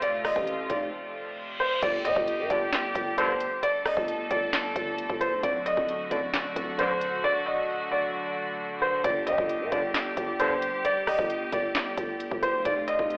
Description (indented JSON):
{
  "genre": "hip hop, trap",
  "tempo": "133 BPM",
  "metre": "4/4",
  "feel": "half-time",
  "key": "unclear",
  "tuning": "A4 = 435 Hz",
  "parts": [
    { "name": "felt-muted upright piano", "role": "melody", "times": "0.0-13.2 s", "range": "C5 to Eb5", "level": "-30 LUFS", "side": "equal", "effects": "low-pass filter" },
    { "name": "warm studio string section", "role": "sustained chords", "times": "0.0-13.2 s", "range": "C3 to A4", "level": "-36 LUFS", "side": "equal", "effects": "none" },
    { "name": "growling 808-style bass", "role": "bass", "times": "0.0-13.2 s", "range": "D1 to Bb2", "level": "-37 LUFS", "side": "equal", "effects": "none" },
    { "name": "trap drum kit", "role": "drums", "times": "0.0-13.2 s", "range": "crash cymbal, handclaps, hi-hat, kick drum, rim click, snare drum", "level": "-34 LUFS", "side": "equal", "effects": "none" },
    { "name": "reverse cymbal", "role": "sound effects", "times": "1.2-1.8 s", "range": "none", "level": "-37 LUFS", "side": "equal", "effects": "none" },
    { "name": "warm brass ensemble", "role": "stabs", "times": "2.5-3.3, 6.1-6.9, 9.7-10.5 s", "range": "F#2 to D3", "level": "-31 LUFS", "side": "equal", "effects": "none" }
  ],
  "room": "little or no reverb",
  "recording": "played on a big sound system in a bare room, large studio reverb, telephone sound",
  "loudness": "-28 LUFS",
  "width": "mono",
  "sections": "0.0-1.8 A section; 1.8-13.2 B section",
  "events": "break 0.9-1.8; reverse cymbal 1.2-1.8; drums muted 7.2-9.0",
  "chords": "0.0 F; 1.8 Gsus2; 5.4 D; 9.0 Gsus2; 12.7 F"
}